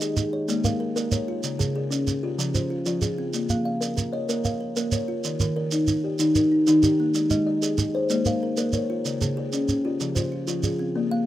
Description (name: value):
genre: southern african traditional, mbira-style interlocking cycle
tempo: 126 BPM (dotted quarters)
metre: 12/8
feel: straight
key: Bb dorian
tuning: A4 = 439 Hz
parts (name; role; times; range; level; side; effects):
- buzzing kalimba; arpeggios; 0.0-11.3 s; Db3 to F5; -24 LUFS; left 2 dB; none
- kalimba; arpeggios; 0.0-11.3 s; Db3 to F5; -29 LUFS; right 3 dB; none
- shekere; percussion; 0.0-10.8 s; none; -26 LUFS; right 3 dB; none
room: moderate studio reverb, RT60 0.5 s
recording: rough home demo mix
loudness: -22 LUFS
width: side -13 dB against mid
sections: 0.0-11.0 A section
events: none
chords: 0.5 Bbm; 1.4 Db; 2.4 Fm; 3.3 Bbm; 5.2 Eb; 7.1 Ab; 8.1 Bbm; 9.1 Db; 10.0 Fm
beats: 0.02 0.49 0.96 | 1.44 1.91 2.39 2.86 | 3.34 3.81 4.29 4.76 | 5.24 5.72 6.19 6.67 | 7.14 7.62 8.10 8.57 | 9.05 9.53 10.01 10.48 | 10.96